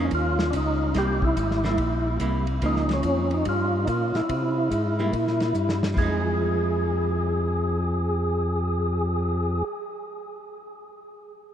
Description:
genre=soul jazz organ trio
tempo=144 BPM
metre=4/4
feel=swing 65% on 8ths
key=unclear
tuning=A4 = 440 Hz
part: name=percussive tonewheel organ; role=melody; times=0.0-9.6 s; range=Db4 to Ab4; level=-26 LUFS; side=equal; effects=slow rotary speaker, overdrive, chorus vibrato
part: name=archtop guitar, miked and amplified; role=accompaniment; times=0.0-9.7 s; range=F3 to E4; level=-32 LUFS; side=right 2 dB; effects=none
part: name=tonewheel organ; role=bass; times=0.0-9.6 s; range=Ab1 to C3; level=-25 LUFS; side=equal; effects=overdrive, slow rotary speaker
part: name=warm soul drum kit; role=drums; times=0.1-9.2 s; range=crash cymbal, cymbal swell, hi-hat, kick drum, ride cymbal, snare drum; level=-32 LUFS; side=left 1 dB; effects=none
room=moderate huge ambient reverb, RT60 7.2 s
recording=in a vast, echoing space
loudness=-22 LUFS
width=side -9 dB against mid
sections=0.0-6.0 A section; 6.0-9.3 B section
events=drum fill 5.5-6.0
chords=0.0 G7(b5, no3) (rootless); 1.0 C7; 2.6 Gm7b5; 4.3 C7; 6.0 Fm7

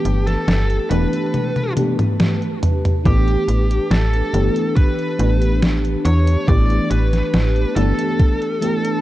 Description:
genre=vaporwave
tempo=70 BPM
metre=4/4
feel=straight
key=unclear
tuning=A4 = 440 Hz
part: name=high-gain lead guitar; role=melody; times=0.0-9.0 s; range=G4 to D5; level=-24 LUFS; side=equal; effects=distortion, tape echo
part: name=FM electric piano with soft pad layer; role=accompaniment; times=0.0-9.0 s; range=E3 to G4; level=-22 LUFS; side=equal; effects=tremolo, ensemble chorus, tape echo
part: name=warbly tape-like pad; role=sustained chords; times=0.0-9.0 s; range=D4 to A5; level=-28 LUFS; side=equal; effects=chorus, built-in reverb
part: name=slap-like FM bass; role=bass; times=0.1-7.9 s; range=E1 to E2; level=-17 LUFS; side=equal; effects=none
part: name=detuned 8-bit digital drum machine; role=drums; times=0.1-9.0 s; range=hi-hat, snare drum, toms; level=-20 LUFS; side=equal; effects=overdrive, vintage 12-bit sampler grit, small room ambience
part: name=electronic kick drum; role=drums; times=3.1-8.4 s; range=none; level=-14 LUFS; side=equal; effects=overdrive, vintage 12-bit sampler grit, small room ambience
room=light reverb, digital ambience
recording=dark, warm production, cassette tape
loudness=-15 LUFS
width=side -15 dB against mid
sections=0.0-9.0 A section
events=drum fill 1.3-3.1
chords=0.0 G69; 3.1 A9sus4

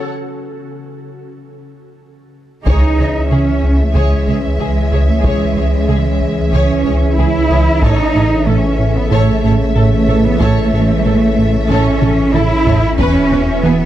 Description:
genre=cinematic, hybrid orchestral and electronic film score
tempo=93 BPM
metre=4/4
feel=straight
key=C# minor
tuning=A4 = 440 Hz
part: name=warm symphonic violin section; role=second line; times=0.0-13.7 s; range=G#4 to C#5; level=-25 LUFS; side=left 4 dB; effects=none
part: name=warm symphonic viola section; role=accompaniment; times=0.0-13.7 s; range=G#4 to B4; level=-26 LUFS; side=right 2 dB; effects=none
part: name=ethereal airy pad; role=sustained chords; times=0.0-13.9 s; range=E3 to B4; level=-24 LUFS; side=left 2 dB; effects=ensemble chorus, built-in reverb
part: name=mellow French horn section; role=sustained chords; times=0.0-13.9 s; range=G#4 to E5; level=-28 LUFS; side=left 4 dB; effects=none
part: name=warm symphonic violin section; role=melody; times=2.7-13.9 s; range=E5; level=-26 LUFS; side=left 4 dB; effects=none
part: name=dark trombone section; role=sustained chords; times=2.7-13.9 s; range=B2 to E3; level=-23 LUFS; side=right 3 dB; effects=none
part: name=rubbery square bass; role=riff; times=2.7-13.8 s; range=C#2 to A3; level=-17 LUFS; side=right 1 dB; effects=none
part: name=pure sine sub bass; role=bass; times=2.7-13.9 s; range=E1 to C#2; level=-18 LUFS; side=equal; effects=none
part: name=warm symphonic cello section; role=bass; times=2.7-13.9 s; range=G#3 to E4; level=-16 LUFS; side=right 2 dB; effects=none
part: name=warm symphonic double bass section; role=bass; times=2.7-13.7 s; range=A1 to E2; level=-21 LUFS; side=right 3 dB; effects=none
part: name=taiko ensemble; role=drums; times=2.7-13.6 s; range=none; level=-18 LUFS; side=equal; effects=none
room=light reverb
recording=close, detailed microphones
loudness=-11 LUFS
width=side -12 dB against mid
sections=0.0-2.7 A section; 2.7-13.9 B section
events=break 0.1-2.7; drum fill 1.7-2.7, 12.0-13.0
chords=0.1 N.C.; 2.7 C#m; 7.8 A; 13.0 E5

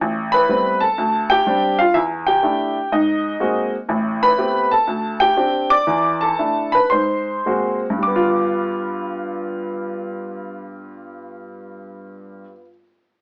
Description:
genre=solo jazz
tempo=105-124 BPM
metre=4/4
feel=swing 66% on 8ths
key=G mixolydian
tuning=A4 = 440 Hz
part: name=clear upright piano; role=solo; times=0.0-12.7 s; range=A1 to D6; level=-20 LUFS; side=equal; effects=none
room=moderate studio reverb, RT60 0.6 s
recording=band playing live in one room, AM radio sound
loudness=-19 LUFS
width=mono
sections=0.0-8.0 A section; 8.0-12.6 B section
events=slowing down 3.9-8.0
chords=0.0 Am9; 1.0 D7sus4; 1.9 E7sus4; 2.9 Ab9; 3.9 Am9; 4.9 D7sus4; 5.9 E7sus4; 6.9 Ab9; 8.0 G7

